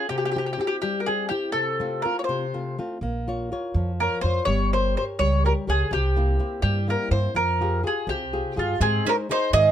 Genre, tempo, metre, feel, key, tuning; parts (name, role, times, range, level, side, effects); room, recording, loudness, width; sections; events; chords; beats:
italian folk, Italian serenade; 82 BPM (dotted quarters); 6/8; straight; F harmonic minor; A4 = 443 Hz
mandolin; melody; 0.0-9.7 s; F4 to Eb5; -24 LUFS; equal
flamenco guitar; accompaniment; 0.0-9.7 s; C3 to Db5; -29 LUFS; left 2 dB
upright bass; bass; 3.0-9.7 s; G1 to Ab2; -24 LUFS; right 1 dB
bowl-back mandolin; second line; 8.8-9.7 s; C4 to Ab4; -28 LUFS; right 6 dB
little or no reverb; close, detailed microphones; -22 LUFS; side -10 dB against mid
0.0-8.8 A section
0.1 C; 1.5 F/C; 3.0 Bbm; 4.5 Gdim; 5.9 C7; 7.3 Fmadd9; 8.8 Ab
| 0.10 0.81 | 1.54 2.27 | 3.01 3.75 | 4.47 5.20 | 5.91 6.62 | 7.35 8.07 | 8.80 9.53